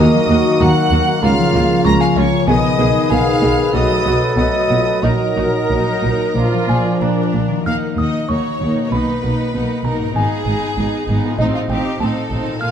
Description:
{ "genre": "cinematic, playful, whimsical film cue", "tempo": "96 BPM", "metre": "4/4", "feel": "straight", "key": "Eb minor", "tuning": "A4 = 441 Hz", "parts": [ { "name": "bright chamber violin section", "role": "melody", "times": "0.0-12.7 s", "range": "F5 to Bb6", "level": "-28 LUFS", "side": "equal", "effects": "none" }, { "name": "music box", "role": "melody", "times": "0.0-12.7 s", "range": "Eb5 to F6", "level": "-26 LUFS", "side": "equal", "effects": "none" }, { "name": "clear chamber violin section", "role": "second line", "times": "0.0-12.7 s", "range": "Eb4 to Bb5", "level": "-25 LUFS", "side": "left 2 dB", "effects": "none" }, { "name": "concert flute", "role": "second line", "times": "0.0-7.3 s", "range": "Bb4 to Bb5", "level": "-22 LUFS", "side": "left 1 dB", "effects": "none" }, { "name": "dark cor anglais", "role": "second line", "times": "0.0-7.3 s", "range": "Bb4 to Eb5", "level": "-27 LUFS", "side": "right 4 dB", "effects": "none" }, { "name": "mellow clarinet", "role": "second line", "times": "0.0-7.3 s", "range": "F4 to Bb4", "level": "-24 LUFS", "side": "equal", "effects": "none" }, { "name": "dark bassoon", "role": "accompaniment", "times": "0.0-7.3 s", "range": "Db3 to F#3", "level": "-23 LUFS", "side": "right 2 dB", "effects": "none" }, { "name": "rich chamber viola section", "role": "accompaniment", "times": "0.0-12.7 s", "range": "Bb3 to Ab4", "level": "-23 LUFS", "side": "right 1 dB", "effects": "none" }, { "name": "warm French horn section", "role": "sustained chords", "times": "0.0-7.3 s", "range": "F3 to Ab4", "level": "-23 LUFS", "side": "left 3 dB", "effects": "none" }, { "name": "concert harp", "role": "arpeggios", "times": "0.0-12.7 s", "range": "Ab2 to Eb6", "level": "-22 LUFS", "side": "left 4 dB", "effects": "none" }, { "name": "warm chamber cello section", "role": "bass", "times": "0.0-12.7 s", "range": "Db2 to Cb3", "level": "-22 LUFS", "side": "right 2 dB", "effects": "none" }, { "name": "warm chamber double bass section", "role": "bass", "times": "0.0-12.7 s", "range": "Ab1 to Eb2", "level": "-22 LUFS", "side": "right 2 dB", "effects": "none" } ], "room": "moderate scoring stage reverb, RT60 1.9 s", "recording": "vinyl crackle", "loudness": "-14 LUFS", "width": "side -8 dB against mid", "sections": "0.0-7.7 A section; 7.7-12.7 B section", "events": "none", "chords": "0.0 Ebm; 1.2 Bbm/Db; 2.5 Abm/Cb; 3.7 B7; 5.0 Ebm/Bb; 6.4 Bb; 7.7 Ebm; 8.9 Bmaj7; 10.2 Fm7b5/Ab; 11.4 F7/A", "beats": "0.60 1.22 1.85 | 2.48 3.10 3.74 4.37 | 5.03 5.70 6.36 7.01 | 7.66 8.29 8.91 9.54 | 10.15 10.77 11.39 12.00 | 12.62" }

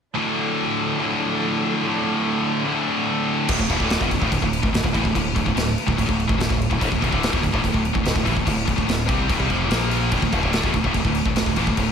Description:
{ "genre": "heavy metal", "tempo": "145 BPM", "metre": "4/4", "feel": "straight", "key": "D minor", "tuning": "A4 = 440 Hz", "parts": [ { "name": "scooped high-gain guitar", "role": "riff", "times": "0.1-11.9 s", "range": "D2 to C4", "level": "-24 LUFS", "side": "right 8 dB", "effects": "distortion" }, { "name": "dark chamber string section", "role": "sustained chords", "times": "0.2-3.5 s", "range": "F3 to A4", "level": "-33 LUFS", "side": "equal", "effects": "none" }, { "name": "scooped high-gain guitar", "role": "riff", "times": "0.2-11.9 s", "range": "D2 to C4", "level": "-24 LUFS", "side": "left 8 dB", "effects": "distortion, slapback echo" }, { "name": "growling fingered electric bass", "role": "bass", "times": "3.5-11.9 s", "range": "D1 to C2", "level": "-26 LUFS", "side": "equal", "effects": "overdrive" }, { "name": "big rock drum kit", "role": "drums", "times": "3.5-11.9 s", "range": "crash cymbal, kick drum, snare drum", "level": "-23 LUFS", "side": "equal", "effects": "none" } ], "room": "moderate lush hall reverb, RT60 2.1 s", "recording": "big arena sound", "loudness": "-19 LUFS", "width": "side -7 dB against mid", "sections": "0.2-3.5 A section; 3.5-11.9 B section", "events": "none", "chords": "0.2 Dm; 9.7 Bb5; 10.1 D5", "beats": "| 0.17 0.58 1.00 1.42 | 1.83 2.25 2.66 3.08 | 3.49 3.91 4.32 4.73 | 5.15 5.56 5.97 6.39 | 6.80 7.21 7.63 8.04 | 8.46 8.87 9.29 9.70 | 10.12 10.53 10.95 11.37 | 11.78" }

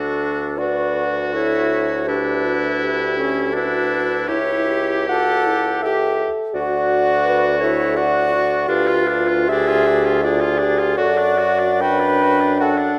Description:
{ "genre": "classical, slow romantic movement for wind quintet", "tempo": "65-86 BPM", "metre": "3/4", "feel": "rubato", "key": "D major", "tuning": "A4 = 437 Hz", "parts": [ { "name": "concert flute", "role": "melody", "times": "0.0-13.0 s", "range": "C#4 to B4", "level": "-24 LUFS", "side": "equal", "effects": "none" }, { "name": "clear oboe", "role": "second line", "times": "0.0-13.0 s", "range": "D4 to G4", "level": "-27 LUFS", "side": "equal", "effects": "none" }, { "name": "dark clarinet", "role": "accompaniment", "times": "0.0-13.0 s", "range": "A4 to G5", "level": "-24 LUFS", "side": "equal", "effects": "none" }, { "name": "mellow bassoon", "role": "bass", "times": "0.0-13.0 s", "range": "C#2 to F#2", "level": "-26 LUFS", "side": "equal", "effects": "none" }, { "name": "dark French horn", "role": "accompaniment", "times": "0.6-13.0 s", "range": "D4 to B4", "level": "-26 LUFS", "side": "equal", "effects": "none" } ], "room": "wet recital hall reverb, RT60 1.4 s", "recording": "none", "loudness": "-18 LUFS", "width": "mono", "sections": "0.0-13.0 A section", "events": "none", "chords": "0.0 D; 2.1 Em7/D; 4.3 A7/C#; 6.5 D; 8.7 Ddim7; 11.0 D/F#", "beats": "0.58 1.34 | 2.07 2.82 3.56 | 4.29 5.10 5.84 | 6.55 7.25 7.96 | 8.68 9.48 10.23 | 10.97 11.82 12.61" }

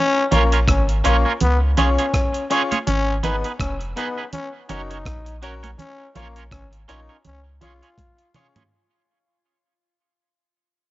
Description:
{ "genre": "roots reggae", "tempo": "82 BPM", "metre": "4/4", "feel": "swing 57% on 16ths", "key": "unclear", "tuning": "A4 = 440 Hz", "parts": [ { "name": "growling trombone", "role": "second line", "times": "0.0-8.3 s", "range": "A#3 to E#4", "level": "-24 LUFS", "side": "left 2 dB", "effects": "tape echo" }, { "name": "twangy electric guitar", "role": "accompaniment", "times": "0.3-8.6 s", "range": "B3 to C#5", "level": "-25 LUFS", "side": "right 5 dB", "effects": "harmonic tremolo, tape echo" }, { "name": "bright upright piano", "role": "stabs", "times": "0.3-8.6 s", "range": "B3 to C#5", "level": "-26 LUFS", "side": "left 4 dB", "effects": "none" }, { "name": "soft dub sub bass", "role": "bass", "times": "0.3-7.8 s", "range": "E#1 to C#2", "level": "-21 LUFS", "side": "equal", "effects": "none" }, { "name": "breakbeat sampler-style drum kit", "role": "drums", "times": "0.3-8.7 s", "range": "hi-hat, kick drum, rim click, toms", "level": "-24 LUFS", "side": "equal", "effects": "none" }, { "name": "congas", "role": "percussion", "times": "0.3-8.7 s", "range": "none", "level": "-26 LUFS", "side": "right 4 dB", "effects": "none" } ], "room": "light reverb", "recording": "nothing above 7.6 kHz", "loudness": "-17 LUFS", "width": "side -16 dB against mid", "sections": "0.0-8.7 A section", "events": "fade-out 0.0-8.7; drum fill 8.0-8.7", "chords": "0.0 A#m; 1.4 C#; 2.9 G#m; 4.3 F#; 5.8 A#m; 7.2 C#", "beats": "0.68 1.41 2.14 | 2.87 3.60 4.33 5.06 | 5.79 6.52 7.25 7.98" }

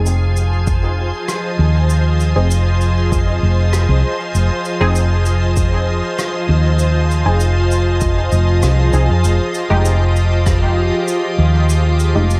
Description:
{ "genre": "ambient dub", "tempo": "98 BPM", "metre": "4/4", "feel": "straight", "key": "unclear", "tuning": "A4 = 440 Hz", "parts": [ { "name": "soft additive organ-like pad", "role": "sustained chords", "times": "0.0-12.4 s", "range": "F3 to Eb5", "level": "-22 LUFS", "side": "equal", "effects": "ensemble chorus, built-in reverb" }, { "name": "filtered dub chord stab", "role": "stabs", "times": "0.0-12.3 s", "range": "Ab3 to Ab4", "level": "-27 LUFS", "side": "equal", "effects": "chorus, dub echo" }, { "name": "hollow-body short-scale fingered electric bass", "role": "bass", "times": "0.0-12.4 s", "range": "F1 to F2", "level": "-16 LUFS", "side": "equal", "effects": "none" }, { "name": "cabasa and rim click", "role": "drums", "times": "0.1-12.4 s", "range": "none", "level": "-30 LUFS", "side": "equal", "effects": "dub echo" }, { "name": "electronic kick drum", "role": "drums", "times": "0.7-10.6 s", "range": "none", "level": "-21 LUFS", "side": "equal", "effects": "overdrive" } ], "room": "moderate lush hall reverb, RT60 2.9 s", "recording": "dreamy mix soaked in reverb", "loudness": "-15 LUFS", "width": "mono", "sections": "0.0-9.2 A section; 9.2-12.4 B section", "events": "none", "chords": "0.0 Ab/F; 9.2 Fm7", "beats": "0.06 0.67 1.28 | 1.90 2.51 3.12 3.73 | 4.34 4.96 5.57 6.18 | 6.79 7.41 8.02 8.63 | 9.24 9.86 10.47 11.08 | 11.69 12.30" }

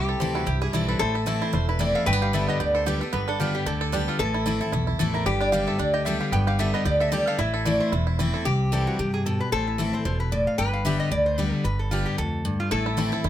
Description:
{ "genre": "bluegrass", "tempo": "225 BPM", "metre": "4/4", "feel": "swing 56% on 8ths", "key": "unclear", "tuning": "A4 = 440 Hz", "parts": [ { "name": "bluegrass banjo", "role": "melody", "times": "0.0-8.5, 12.7-13.3 s", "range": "E3 to A4", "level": "-30 LUFS", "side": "right 6 dB", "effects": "none" }, { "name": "lap resonator guitar", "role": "second line", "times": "0.0-13.3 s", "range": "E4 to B4", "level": "-30 LUFS", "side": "left 4 dB", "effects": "none" }, { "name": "picked steel-string acoustic guitar", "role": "accompaniment", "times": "0.0-13.3 s", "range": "E2 to G4", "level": "-26 LUFS", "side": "left 2 dB", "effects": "none" }, { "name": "upright bass", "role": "bass", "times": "0.0-13.3 s", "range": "E1 to G2", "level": "-28 LUFS", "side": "right 1 dB", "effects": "none" }, { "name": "lap resonator guitar", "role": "melody", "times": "0.2-13.0 s", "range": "E4 to G5", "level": "-28 LUFS", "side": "equal", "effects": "none" } ], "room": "light reverb", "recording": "close, detailed microphones", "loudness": "-22 LUFS", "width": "side -11 dB against mid", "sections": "0.0-8.5 A section; 8.5-13.3 A section", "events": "none", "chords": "0.0 C; 1.0 Am; 2.1 G; 4.2 Am; 5.3 G; 7.4 Am; 8.5 C; 9.5 Am; 10.6 G; 12.7 Am", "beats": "0.20 0.47 0.73 | 1.00 1.27 1.53 1.80 | 2.07 2.33 2.60 2.87 | 3.13 3.40 3.66 3.93 | 4.20 4.46 4.73 4.99 | 5.26 5.53 5.79 6.06 | 6.33 6.59 6.86 7.12 | 7.39 7.66 7.92 8.19 | 8.46 8.72 8.99 9.26 | 9.52 9.79 10.05 10.32 | 10.59 10.85 11.12 11.38 | 11.65 11.92 12.18 12.45 | 12.71 12.98 13.25" }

